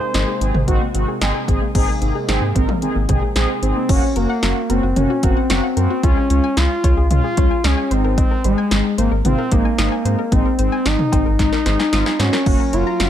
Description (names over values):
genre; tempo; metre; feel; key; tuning
synth-pop; 112 BPM; 4/4; straight; Ab mixolydian; A4 = 435 Hz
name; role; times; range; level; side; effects
expressive portamento lead; melody; 0.0-13.1 s; Ab3 to C5; -20 LUFS; left 1 dB; chorus
brassy analog pad; sustained chords; 0.0-3.9, 12.5-13.1 s; C3 to Bb4; -28 LUFS; equal; chorus
soft round pluck; arpeggios; 0.0-13.0 s; Eb3 to F6; -29 LUFS; left 4 dB; chorus, digital delay
mellow synth brass; accompaniment; 0.1-13.1 s; Ab3 to Bb4; -23 LUFS; left 1 dB; chorus
round analog bass; bass; 0.1-13.1 s; Gb1 to Ab2; -20 LUFS; equal; none
punchy analog drum machine; drums; 0.1-13.1 s; cowbell, crash cymbal, hi-hat, kick drum, snare drum, toms; -19 LUFS; equal; none
room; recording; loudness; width
light reverb, digital ambience; dark, warm production; -15 LUFS; side -10 dB against mid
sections
0.0-1.8 A section; 1.8-3.9 B section; 3.9-13.1 C section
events
drum fill 11.4-12.5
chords
0.0 Abadd9; 3.9 Gb; 6.0 Db; 7.9 Abadd9; 12.5 Gb